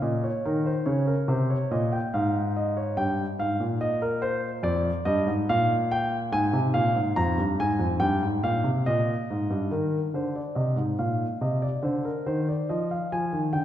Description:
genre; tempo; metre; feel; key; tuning
classical, baroque-style two-part invention for grand piano; 71 BPM; 4/4; straight; unclear; A4 = 437 Hz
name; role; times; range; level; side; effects
dark grand piano; solo; 0.0-13.6 s; F2 to Bb5; -24 LUFS; equal; none
room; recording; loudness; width
wet scoring stage reverb, RT60 1.5 s; recorded in a church or concert hall; -24 LUFS; side -11 dB against mid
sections
0.0-9.7 A section; 9.7-13.6 B section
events
none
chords
0.0 Eb5; 1.3 Ab; 3.0 Eb/G; 4.6 Bb/F; 6.3 Bb5/Ab; 8.0 Eb/G; 9.7 Eb5; 11.4 Cm; 13.1 Fm

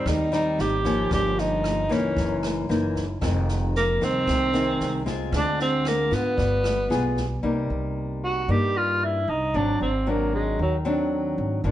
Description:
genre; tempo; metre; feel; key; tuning
bossa nova; 114 BPM; 4/4; straight; C minor; A4 = 440 Hz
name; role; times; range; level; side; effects
breathy tenor saxophone; melody; 0.0-10.8 s; Gb3 to G4; -24 LUFS; right 1 dB; none
nylon-string guitar; accompaniment; 0.0-11.7 s; F2 to Ab4; -26 LUFS; left 1 dB; none
upright bass; bass; 0.0-11.7 s; F1 to Ab2; -28 LUFS; equal; none
open jazz drum kit; drums; 0.1-7.2 s; kick drum, rim click, snare drum; -32 LUFS; equal; none
room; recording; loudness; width
moderate stone room reverb, RT60 1.0 s; band playing live in one room, nothing above 10.7 kHz; -22 LUFS; side -13 dB against mid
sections
0.0-7.4 A section; 7.4-11.7 B section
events
tenor saxophone solo 7.4-11.7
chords
0.0 Abmaj7; 1.1 Gm7b5; 2.2 F#6; 3.2 Fm7; 5.3 Dm7b5; 6.4 G7b9; 7.4 Cm7; 9.5 Ab7#11

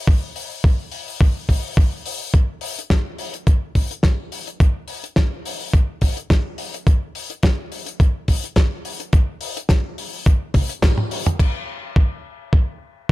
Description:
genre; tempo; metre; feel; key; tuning
nu-disco; 106 BPM; 4/4; swing 54% on 16ths; none; none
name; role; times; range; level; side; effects
electronic kick drum; drums; 0.1-13.1 s; none; -15 LUFS; equal; none
damped 70s drum kit; drums; 0.4-11.5 s; crash cymbal, hi-hat, snare drum, toms; -25 LUFS; left 1 dB; none
room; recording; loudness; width
little or no reverb; none; -18 LUFS; side -18 dB against mid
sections
0.0-11.4 A section; 11.4-13.1 B section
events
drum fill 10.5-11.4; band accent 10.8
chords
none

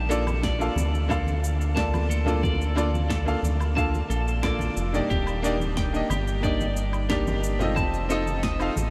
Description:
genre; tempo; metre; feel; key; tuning
sunset chillout; 90 BPM; 4/4; straight; Bb major; A4 = 440 Hz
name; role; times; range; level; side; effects
electric guitar at the edge of break-up; arpeggios; 0.0-8.8 s; G4 to A5; -34 LUFS; equal; subtle chorus, analog delay, shimmer reverb
round analog bass; bass; 0.0-8.9 s; Eb1 to D2; -29 LUFS; equal; none
clear concert grand piano; accompaniment; 0.1-8.7 s; Bb3 to F5; -30 LUFS; equal; analog delay, shimmer reverb
electronic shaker, woodblock and snare drum; drums; 0.1-8.9 s; none; -38 LUFS; equal; overdrive, small room ambience
congas; percussion; 0.3-8.9 s; none; -38 LUFS; equal; none
electronic kick drum; drums; 0.4-8.6 s; none; -33 LUFS; equal; overdrive, small room ambience
room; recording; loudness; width
moderate huge ambient reverb, RT60 6.9 s; dreamy mix soaked in reverb; -25 LUFS; mono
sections
0.0-8.9 A section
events
none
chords
0.0 Bbmaj7; 5.1 Ebmaj7; 7.8 F7

